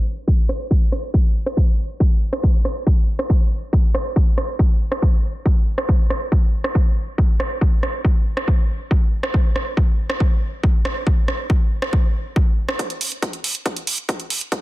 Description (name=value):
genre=trance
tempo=139 BPM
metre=4/4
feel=straight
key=none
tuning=none
part: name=electronic kick drum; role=drums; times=0.3-14.6 s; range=none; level=-16 LUFS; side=equal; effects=overdrive, high-pass filter on kick, high-pass filter on room
part: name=house drum kit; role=drums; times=0.5-14.6 s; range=hi-hat, rim click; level=-25 LUFS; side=right 1 dB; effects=overdrive, high-pass filter on snare, sidechain pumping on hats, high-pass filter on hats, high-pass filter on room
room=little or no reverb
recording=dense, heavily limited modern master, low-pass filter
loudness=-17 LUFS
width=side -18 dB against mid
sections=0.0-12.8 A section; 12.8-14.6 B section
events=filter sweep 0.0-12.8; build-up 12.8-14.6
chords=none